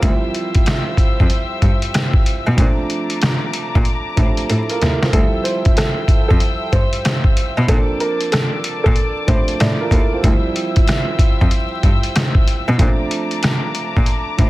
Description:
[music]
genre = hip hop, boom-bap hip-hop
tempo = 94 BPM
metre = 4/4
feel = swing 63% on 16ths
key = D minor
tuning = A4 = 440 Hz
[part]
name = dark upright piano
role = accompaniment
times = 0.0-14.5 s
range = E3 to Bb4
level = -24 LUFS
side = right 3 dB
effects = cassette tape, high-pass filter, low-pass filter
[part]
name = rich chamber string section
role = sustained chords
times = 0.0-14.5 s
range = C5 to E6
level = -26 LUFS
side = left 2 dB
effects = high-pass filter, low-pass filter
[part]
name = clear cello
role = bass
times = 0.0-14.5 s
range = D2 to B2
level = -19 LUFS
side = equal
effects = none
[part]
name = trip hop sampler-style drum kit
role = drums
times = 0.0-14.5 s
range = hi-hat, kick drum, rim click, snare drum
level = -16 LUFS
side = equal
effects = none
[part]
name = dark upright piano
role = melody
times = 5.1-9.9 s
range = A4 to D5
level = -23 LUFS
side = right 1 dB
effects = high-pass filter, low-pass filter, tape echo
[sound]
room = studio reverb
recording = dense, heavily limited modern master, vinyl crackle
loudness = -14 LUFS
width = side -18 dB against mid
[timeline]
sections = 0.0-5.1 A section; 5.1-14.5 B section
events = drum fill 4.5-5.1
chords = 0.0 Dm11 (rootless); 2.6 Bbmaj7; 5.1 Dm11 (rootless); 7.7 Bbmaj7; 10.2 Dm11 (rootless); 12.8 Bbmaj7

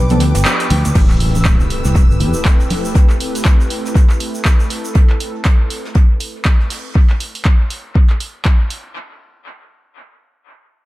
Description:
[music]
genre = deep house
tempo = 120 BPM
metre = 4/4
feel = swing 59% on 16ths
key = A minor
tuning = A4 = 440 Hz
[part]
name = breathy flute-like synth lead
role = melody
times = 0.0-0.5 s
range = B4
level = -30 LUFS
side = left 2 dB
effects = none
[part]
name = airy breathy pad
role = sustained chords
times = 0.0-6.9 s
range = A3 to D6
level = -26 LUFS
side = equal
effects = chorus, vintage 12-bit sampler grit, sidechain pumping
[part]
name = deep mellow chord stab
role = stabs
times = 0.0-0.6 s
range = F3 to A4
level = -19 LUFS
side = right 1 dB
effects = chorus, vintage 12-bit sampler grit, sidechain pumping, dub echo
[part]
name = fingered electric bass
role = bass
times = 0.0-2.3 s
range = G1 to E2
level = -15 LUFS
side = equal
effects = tube saturation
[part]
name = string machine, violins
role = texture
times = 0.0-3.0 s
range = D6 to E6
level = -31 LUFS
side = left 1 dB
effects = ensemble chorus, sidechain pumping
[part]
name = punchy analog drum machine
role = drums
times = 0.1-8.8 s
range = crash cymbal, handclaps, hi-hat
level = -22 LUFS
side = equal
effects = dub echo
[part]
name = egg shaker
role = percussion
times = 0.1-4.9 s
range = none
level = -32 LUFS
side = right 3 dB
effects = none
[part]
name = soft brush drum kit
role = drums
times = 0.2-6.8 s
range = hi-hat, snare drum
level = -35 LUFS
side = right 3 dB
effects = none
[part]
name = congas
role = percussion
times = 0.7-2.8 s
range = none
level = -23 LUFS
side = equal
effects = none
[part]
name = electronic kick drum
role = drums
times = 1.0-8.6 s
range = none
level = -11 LUFS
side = equal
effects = overdrive
[part]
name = impact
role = sound effects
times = 1.0-3.0 s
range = none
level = -23 LUFS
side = equal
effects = none
[part]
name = ethereal airy pad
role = texture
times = 1.6-5.0 s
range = C4 to G5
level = -31 LUFS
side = left 1 dB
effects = ensemble chorus, built-in reverb, sidechain pumping
[sound]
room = light reverb, digital ambience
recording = echo-heavy mix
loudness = -12 LUFS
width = side -18 dB against mid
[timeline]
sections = 1.0-9.0 A section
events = break 0.0-1.0; band accent 0.5; fade-out on ambient pad 1.0-5.0; impact 1.0-3.0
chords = 0.0 G7; 1.0 Am9

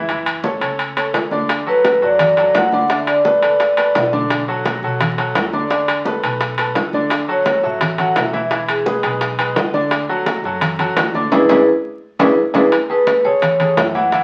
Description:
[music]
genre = latin, salsa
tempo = 171 BPM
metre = 4/4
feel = straight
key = unclear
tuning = A4 = 439 Hz
[part]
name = bright concert grand piano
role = accompaniment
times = 0.0-14.2 s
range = D3 to E5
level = -23 LUFS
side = equal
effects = none
[part]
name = upright bass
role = bass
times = 0.0-14.2 s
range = E1 to B2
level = -34 LUFS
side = equal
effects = none
[part]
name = congas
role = percussion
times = 0.1-14.2 s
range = none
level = -30 LUFS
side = equal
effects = none
[part]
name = timbales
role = percussion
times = 0.1-14.2 s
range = none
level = -23 LUFS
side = equal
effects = none
[part]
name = bongos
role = percussion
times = 1.5-14.2 s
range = none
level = -27 LUFS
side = equal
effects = none
[part]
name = vibraphone with medium hard mallets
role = melody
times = 1.7-4.1, 7.3-9.0, 11.3-14.2 s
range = E4 to F#5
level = -17 LUFS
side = equal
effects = none
[sound]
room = wet studio reverb, RT60 0.7 s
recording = very old 78 rpm record, vinyl crackle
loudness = -16 LUFS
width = mono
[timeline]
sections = 0.0-12.7 A section; 12.7-14.2 A section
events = drum fill 11.3-12.7; band accent 11.3-12.7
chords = 0.1 F#m7; 1.5 D69; 2.9 E7sus4; 4.3 Bm7; 5.7 E7sus4; 7.1 Dmaj9; 8.5 E7; 9.9 E9sus4; 11.3 E7; 12.7 Amaj7

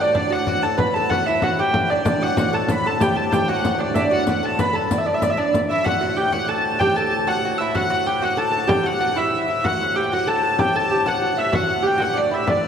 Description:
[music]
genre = medieval dance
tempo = 127 BPM (dotted quarters)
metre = 6/8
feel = straight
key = D major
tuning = A4 = 440 Hz
[part]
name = clear hurdy-gurdy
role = melody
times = 0.0-12.7 s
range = D5 to B5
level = -20 LUFS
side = left 1 dB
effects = none
[part]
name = lute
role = second line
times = 0.0-12.7 s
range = D4 to B4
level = -24 LUFS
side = right 3 dB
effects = none
[part]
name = pedal harmonium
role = drone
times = 0.0-12.7 s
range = D2 to A2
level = -28 LUFS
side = equal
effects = none
[part]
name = frame drum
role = percussion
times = 0.1-12.7 s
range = none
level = -26 LUFS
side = left 2 dB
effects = none
[part]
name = riq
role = percussion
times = 2.1-5.7 s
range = none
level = -30 LUFS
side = left 1 dB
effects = none
[sound]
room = wet church reverb, RT60 3.5 s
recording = none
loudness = -18 LUFS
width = side -8 dB against mid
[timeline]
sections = 0.0-5.9 A section; 5.9-12.7 B section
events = none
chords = none

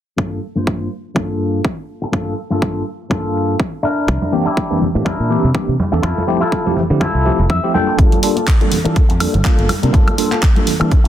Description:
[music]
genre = filtered disco house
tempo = 123 BPM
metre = 4/4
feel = swing 56% on 16ths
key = G dorian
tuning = A4 = 438 Hz
[part]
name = electric guitar with an envelope filter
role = riff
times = 0.2-11.1 s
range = G2 to G5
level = -20 LUFS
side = left 2 dB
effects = vintage 12-bit sampler grit, sidechain pumping, low-pass filter
[part]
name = electronic kick drum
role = drums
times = 0.2-11.0 s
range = none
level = -15 LUFS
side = equal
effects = high-pass filter on kick, high-pass filter on room
[part]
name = fingered electric bass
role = bass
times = 4.1-11.1 s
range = F1 to E3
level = -17 LUFS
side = equal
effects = sidechain pumping, low-pass filter
[part]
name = tube shaker and congas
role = percussion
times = 4.1-11.1 s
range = none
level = -23 LUFS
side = right 2 dB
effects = sidechain pumping on perc, low-pass filter on perc
[part]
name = bright tine electric piano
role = accompaniment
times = 4.3-11.0 s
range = E3 to Bb4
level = -19 LUFS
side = equal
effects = medium stereo tremolo, phaser, sidechain pumping, low-pass filter
[part]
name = house drum kit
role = drums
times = 8.0-11.1 s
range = handclaps, hi-hat, woodblock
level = -22 LUFS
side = equal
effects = sidechain pumping on hats, low-pass filter on hats, low-pass filter on snare, sidechain pumping on perc, low-pass filter on perc, low-pass filter on room
[sound]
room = light reverb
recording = dense, heavily limited modern master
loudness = -14 LUFS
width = side -11 dB against mid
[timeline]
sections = 0.2-8.0 A section; 8.0-11.1 B section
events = filter sweep 0.2-8.0, 8.0-11.1; clean electric guitar fill 7.3-8.0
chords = 0.2 Gm9; 3.8 C9; 6.0 Fmaj7; 8.0 Gm9

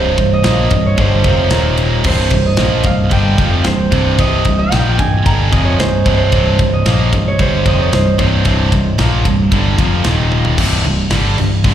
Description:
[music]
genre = heavy metal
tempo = 112 BPM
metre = 4/4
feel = straight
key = C minor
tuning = A4 = 440 Hz
[part]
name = Celtic harp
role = melody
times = 0.0-10.2 s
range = Bb4 to Bb5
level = -18 LUFS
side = right 3 dB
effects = slapback echo, digital delay
[part]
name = distorted electric guitar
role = riff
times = 0.0-11.7 s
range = C2 to Bb3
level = -22 LUFS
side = left 11 dB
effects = overdrive, slapback echo
[part]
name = heavy high-gain guitar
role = riff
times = 0.0-11.7 s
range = C2 to Bb3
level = -19 LUFS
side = right 8 dB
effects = distortion, slapback echo
[part]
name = tight distorted guitar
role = riff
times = 0.0-11.7 s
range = C2 to Bb3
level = -22 LUFS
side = left 1 dB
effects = distortion, slapback echo
[part]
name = overdriven picked electric bass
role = bass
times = 0.0-11.7 s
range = C1 to Bb1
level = -15 LUFS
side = equal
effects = none
[part]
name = tight metal drum kit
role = drums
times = 0.2-11.7 s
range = crash cymbal, kick drum, ride cymbal, snare drum, toms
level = -18 LUFS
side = equal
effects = none
[sound]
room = small room ambience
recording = live gig heard through the venue's PA, recital hall reverb, faint mains hum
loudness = -11 LUFS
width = side -10 dB against mid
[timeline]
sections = 0.0-10.6 A section; 10.6-11.7 B section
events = drum fill 10.3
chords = 0.0 Cm; 1.5 Eb5; 2.0 Cm; 10.1 Eb5; 10.6 C5

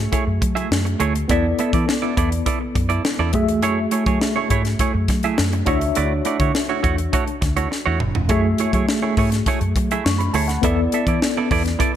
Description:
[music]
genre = polished 1980s jazz-funk pop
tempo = 103 BPM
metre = 4/4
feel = straight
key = F# minor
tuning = A4 = 440 Hz
[part]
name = tine electric piano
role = accompaniment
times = 0.0-12.0 s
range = A3 to C#6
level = -23 LUFS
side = left 2 dB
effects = overdrive, fast stereo tremolo, analog chorus
[part]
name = vintage muted fingered electric bass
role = bass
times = 0.0-11.7 s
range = E1 to F#3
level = -22 LUFS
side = equal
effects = none
[part]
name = semi-hollow electric guitar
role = riff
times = 0.1-12.0 s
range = A3 to E5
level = -23 LUFS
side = right 8 dB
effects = lush chorus
[part]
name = crisp fusion drum kit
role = drums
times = 0.1-11.9 s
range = hi-hat, kick drum, snare drum, toms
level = -22 LUFS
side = left 1 dB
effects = gated reverb
[sound]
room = light reverb, studio ambience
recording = none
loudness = -17 LUFS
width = side -10 dB against mid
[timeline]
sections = 0.0-12.0 A section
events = drum fill 7.7-8.3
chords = 0.0 F#m9; 1.3 E7sus4; 3.3 F#m9; 5.7 Dmaj9; 8.3 F#m9; 10.6 E7sus4

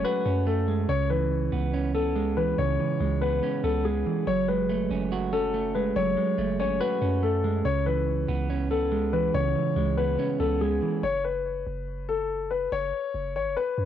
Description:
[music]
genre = hip hop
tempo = 142 BPM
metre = 4/4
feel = half-time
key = F# minor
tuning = A4 = 440 Hz
[part]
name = dark grand piano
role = melody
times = 0.0-13.9 s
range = G#4 to C#5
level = -28 LUFS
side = left 7 dB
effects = plate reverb
[part]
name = semi-hollow electric guitar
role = accompaniment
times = 0.0-11.0 s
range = C#3 to F#4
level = -27 LUFS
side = right 6 dB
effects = cassette tape, plate reverb
[part]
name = long sustained 808-style bass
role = bass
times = 0.0-13.9 s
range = F#1 to F#2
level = -30 LUFS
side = right 1 dB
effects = none
[sound]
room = moderate studio reverb, RT60 0.6 s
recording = home recording on cassette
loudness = -24 LUFS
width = side -10 dB against mid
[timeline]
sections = 0.0-11.0 A section; 11.0-13.9 B section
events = none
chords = 0.0 F#madd9; 0.9 C#m7; 4.3 F#madd9; 7.7 C#m7; 11.0 F#5

